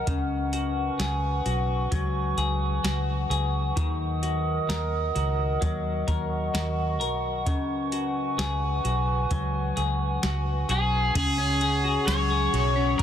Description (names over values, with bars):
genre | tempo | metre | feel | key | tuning
dream pop | 65 BPM | 4/4 | straight | unclear | A4 = 443 Hz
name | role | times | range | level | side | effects
warbly tape-like pad | sustained chords | 0.0-13.0 s | Ab4 to Eb6 | -30 LUFS | right 1 dB | chorus, built-in reverb
semi-hollow electric guitar | arpeggios | 0.0-13.0 s | Db3 to Bb4 | -30 LUFS | left 3 dB | wide subtle chorus, digital delay
vintage muted fingered electric bass | bass | 0.1-13.0 s | Cb2 to Eb2 | -28 LUFS | equal | none
soft vintage rhythm box | drums | 0.1-13.0 s | crash cymbal, hi-hat, kick drum, ride cymbal, snare drum, tambourine | -31 LUFS | equal | overdrive
overdriven slide guitar | melody | 10.7-13.0 s | Ab4 to Db5 | -26 LUFS | left 2 dB | digital delay
room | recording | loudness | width
light reverb, digital ambience | dense, heavily limited modern master | -24 LUFS | side -9 dB against mid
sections
0.0-11.2 A section; 11.2-13.0 B section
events
none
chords
0.1 Db7sus4; 3.8 Ebm; 7.5 Db7sus4